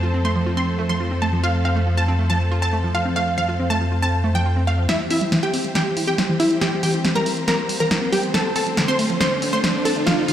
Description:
uplifting trance; 139 BPM; 4/4; straight; F major; A4 = 440 Hz
wide unison pluck; melody; 0.0-10.3 s; E4 to C6; -22 LUFS; equal; digital delay
clear studio string section; sustained chords; 0.0-10.3 s; D3 to C5; -28 LUFS; left 1 dB
analog pluck; arpeggios; 0.0-10.3 s; D3 to F4; -26 LUFS; right 2 dB; chorus, digital delay
fat analog bass; bass; 0.0-4.9 s; F2; -21 LUFS; equal
punchy analog drum machine; drums; 4.9-10.3 s; hi-hat, snare drum; -23 LUFS; equal
riser; sound effects; 6.6-10.3 s; -29 LUFS; equal
light reverb; played on a big sound system in a bare room, stone room reverb; -18 LUFS; side -10 dB against mid
0.0-4.9 A section; 4.9-10.3 B section
build-up 4.9-10.3; drum fill 4.9-10.3; filter sweep on synth arpeggio sound 4.9-10.3; riser 6.6-10.3
0.0 F; 4.9 C; 8.3 Dm7

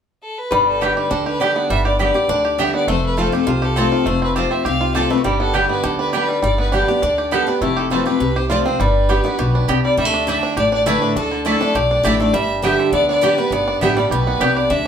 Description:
bluegrass; 203 BPM; 4/4; straight; G mixolydian, G major from 10.0 s; A4 = 438 Hz
rich fiddle; melody; 0.2-14.9 s; G4 to F5; -21 LUFS; left 1 dB
lap resonator guitar; second line; 0.5-9.8 s; D4 to B4; -24 LUFS; left 3 dB
picked steel-string acoustic guitar; accompaniment; 0.5-14.9 s; F2 to G4; -20 LUFS; left 2 dB
bluegrass banjo; arpeggios; 0.5-14.9 s; D3 to G4; -22 LUFS; right 4 dB
upright bass; bass; 0.5-14.9 s; F1 to D2; -23 LUFS; equal
mandolin; stabs; 0.8-14.5 s; A3 to A5; -22 LUFS; right 4 dB
wet studio ambience, RT60 0.5 s; band playing live in one room; -15 LUFS; side -8 dB against mid
0.5-10.0 A section; 10.0-14.9 B section
0.0 N.C.; 0.5 G; 2.9 F; 5.2 G; 7.6 F; 8.8 G; 10.0 Dsus2; 12.3 G

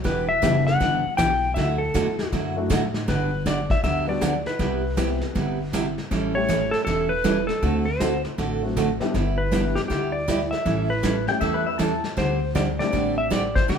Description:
country, western swing; 158 BPM; 4/4; swing 64% on 8ths; G major; A4 = 440 Hz
picked steel-string acoustic guitar; accompaniment; 0.0-13.8 s; C3 to A4; -26 LUFS; right 3 dB
upright bass; bass; 0.0-13.8 s; E1 to A2; -28 LUFS; left 1 dB
vintage brush drum kit; drums; 0.0-13.8 s; brushed snare drum, hi-hat, kick drum, snare drum; -29 LUFS; left 1 dB
clean lap steel guitar; melody; 0.1-13.8 s; G4 to G5; -25 LUFS; left 2 dB
dark upright piano; accompaniment; 0.4-13.3 s; F#3 to G4; -29 LUFS; left 3 dB
pedal steel guitar; second line; 11.3-12.0 s; B4 to A5; -26 LUFS; left 4 dB
moderate large studio reverb, RT60 1.2 s; band playing live in one room; -21 LUFS; side -7 dB against mid
0.0-3.1 A section; 3.1-13.8 B section
0.1 Em7; 1.6 Dadd9; 3.1 Gmaj7; 4.6 Cmaj7; 6.1 A7; 7.6 D7; 9.1 G6; 10.7 A7; 12.2 D7sus4

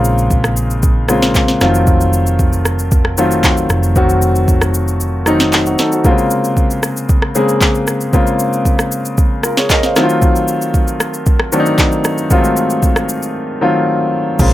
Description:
amapiano; 115 BPM; 4/4; straight; A4 = 440 Hz
warm grand piano; accompaniment; 0.0-14.5 s; C3 to F5; -14 LUFS; left 1 dB
hollow-body short-scale fingered electric bass; bass; 0.0-5.7 s; F1 to Bb1; -16 LUFS; equal
smooth R&B drum kit; drums; 0.0-14.5 s; crash cymbal, handclaps, kick drum, rim click, shaker, snare drum; -14 LUFS; equal
deep log drum bass; bass; 14.4-14.5 s; Bb1; -11 LUFS; equal
little or no reverb; -11 LUFS; side -14 dB against mid
0.0-14.4 A section
kick muted 5.0-6.0
0.0 Bbm9; 1.6 F7b9; 6.0 Bbm9; 10.0 F7b9

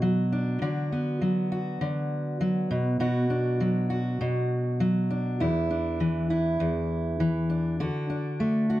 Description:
pop; 100 BPM; 4/4; straight; D major; A4 = 440 Hz
fingerpicked steel-string acoustic guitar; solo; 0.0-8.8 s; E2 to F#4; -24 LUFS; equal
moderate studio reverb, RT60 0.8 s; -24 LUFS; side -15 dB against mid
0.0-8.8 A section
0.0 Bm; 0.6 D6; 2.7 Bm; 5.4 Dsus2/E; 7.8 D

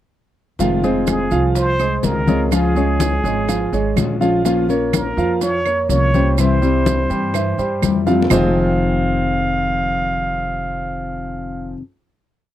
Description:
latin, Cuban son and guajira; 124 BPM; 4/4; straight; F minor; A4 = 443 Hz
nylon-string guitar; accompaniment; 0.6-11.8 s; F2 to F4; -20 LUFS; left 5 dB
warm concert grand piano; arpeggios; 0.6-11.7 s; E3 to F5; -21 LUFS; right 3 dB
upright bass; bass; 0.6-11.7 s; F1 to G2; -22 LUFS; right 1 dB
bongos; percussion; 0.6-8.4 s; -28 LUFS; left 8 dB
congas; percussion; 0.6-8.4 s; -23 LUFS; left 2 dB
maracas; percussion; 0.6-8.4 s; -32 LUFS; right 25 dB
trumpet with plunger mute; melody; 1.1-11.7 s; Ab4 to F5; -22 LUFS; right 1 dB
claves; percussion; 1.1-8.4 s; -28 LUFS; right 28 dB
light reverb; dry, close 1970s-style studio recording; -15 LUFS; side -12 dB against mid
0.6-8.3 verse; 8.3-12.2 final chord
drum fill 8.1
0.6 Fm7; 2.5 Db; 4.5 Bbm; 6.4 C; 8.3 Fm7

